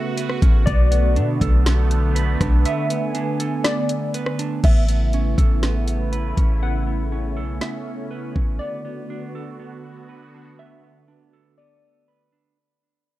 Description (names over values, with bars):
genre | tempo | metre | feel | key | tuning
hip hop, atmospheric cloud-rap | 121 BPM | 4/4 | half-time | unclear | A4 = 440 Hz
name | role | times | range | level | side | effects
glassy wavetable pluck | melody | 0.0-12.0 s | D5 to F#5 | -29 LUFS | left 2 dB | chorus, low-pass filter, tape echo
sweeping resonant pad | sustained chords | 0.0-12.5 s | C#3 to G#5 | -27 LUFS | right 1 dB | chorus, sidechain pumping
clean electric guitar | arpeggios | 0.0-12.6 s | B3 to B4 | -30 LUFS | right 6 dB | low-pass filter, tape echo
smooth R&B drum kit | drums | 0.2-8.5 s | crash cymbal, hi-hat, kick drum, rim click, snare drum | -21 LUFS | equal | none
clean 808-style bass | bass | 0.4-8.6 s | A1 to B2 | -19 LUFS | equal | none
room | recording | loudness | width
digital ambience | dark, warm production | -18 LUFS | side -16 dB against mid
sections
0.0-4.6 A section; 4.6-12.6 B section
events
break 2.7-4.6; fade-out 4.6-12.6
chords
0.0 Aadd9; 0.7 Bm7; 4.6 Aadd9; 8.6 Bm7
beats
0.17 | 0.67 1.17 1.66 2.16 | 2.65 3.15 3.65 4.14 | 4.64 5.13 5.63 6.12 | 6.62 7.12 7.61 8.11 | 8.60 9.10 9.60 10.09 | 10.59 11.08 11.58 12.07